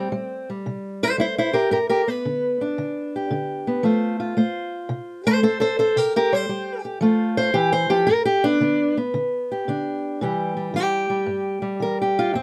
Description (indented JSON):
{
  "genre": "acoustic country blues, solo or duo",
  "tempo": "113 BPM",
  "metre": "4/4",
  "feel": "swing 67% on 8ths",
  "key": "C major",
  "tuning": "A4 = 440 Hz",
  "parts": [
    { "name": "fingerpicked old ladder-braced acoustic guitar", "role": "solo", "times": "0.0-12.4 s", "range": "F2 to C5", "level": "-22 LUFS", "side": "equal", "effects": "none" }
  ],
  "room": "light reverb",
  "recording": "none",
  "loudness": "-22 LUFS",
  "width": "mono",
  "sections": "0.0-10.2 A section; 10.2-12.4 B section",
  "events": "steel-string acoustic guitar solo 0.0-10.2",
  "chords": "0.0 C; 1.7 G; 3.8 F; 6.0 C5; 7.0 F; 8.1 G; 10.2 C"
}